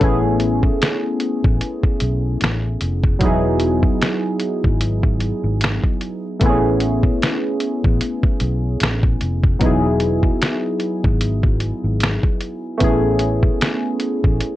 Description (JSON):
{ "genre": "lo-fi hip hop", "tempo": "75 BPM", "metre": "4/4", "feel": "swing 56% on 16ths", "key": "unclear", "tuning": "A4 = 442 Hz", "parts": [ { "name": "warm analog keys", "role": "accompaniment", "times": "0.0-14.6 s", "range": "F#3 to G#4", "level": "-20 LUFS", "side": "equal", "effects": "chorus, cassette tape, low-pass filter, plate reverb" }, { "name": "vintage muted fingered electric bass", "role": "bass", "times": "0.0-14.4 s", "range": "E1 to B1", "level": "-21 LUFS", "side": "equal", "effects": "none" }, { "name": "lo-fi sampler-style drum kit", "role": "drums", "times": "0.0-14.6 s", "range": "finger snaps, hi-hat, kick drum, snare drum", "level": "-18 LUFS", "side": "equal", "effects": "none" } ], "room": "light reverb", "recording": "cassette tape", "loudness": "-16 LUFS", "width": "side -15 dB against mid", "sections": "0.0-14.6 A section", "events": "none", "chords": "0.0 Amaj9; 3.2 Emaj9; 6.4 Amaj9; 9.6 Emaj9; 12.8 Amaj9" }